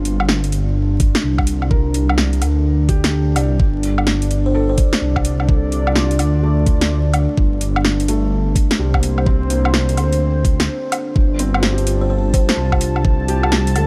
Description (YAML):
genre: future garage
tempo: 127 BPM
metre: 4/4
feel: swing 64% on 16ths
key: G minor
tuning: A4 = 441 Hz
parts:
  - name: felt-muted upright piano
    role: accompaniment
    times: 0.0-13.9 s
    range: G3 to D5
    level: -30 LUFS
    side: equal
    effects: sidechain pumping, analog delay
  - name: dark analog pad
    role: sustained chords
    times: 0.0-13.9 s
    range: G3 to A5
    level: -25 LUFS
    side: equal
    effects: chorus, sidechain pumping
  - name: dark detuned saw bass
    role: bass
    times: 0.0-13.9 s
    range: G1 to D2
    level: -20 LUFS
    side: equal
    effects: sidechain pumping
  - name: garage drum kit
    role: drums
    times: 0.1-13.9 s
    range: hi-hat, snare drum, woodblock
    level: -23 LUFS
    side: equal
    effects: overdrive, studio reverb
  - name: electronic kick drum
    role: drums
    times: 1.0-13.2 s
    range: none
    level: -18 LUFS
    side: equal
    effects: overdrive, studio reverb
  - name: buzzing kalimba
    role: melody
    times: 4.5-5.0, 12.0-12.5 s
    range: C5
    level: -30 LUFS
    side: equal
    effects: analog delay
room: little or no reverb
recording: vinyl crackle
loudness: -17 LUFS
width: mono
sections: 0.0-11.2 A section; 11.2-13.9 B section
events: break 10.7-11.2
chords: 0.0 Gm7; 3.6 Gm9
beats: 0.29 0.76 1.24 | 1.71 2.18 2.65 3.12 | 3.60 4.07 4.54 5.01 | 5.49 5.96 6.43 6.90 | 7.38 7.85 8.32 8.79 | 9.27 9.74 10.21 10.68 | 11.16 11.63 12.10 12.57 | 13.05 13.52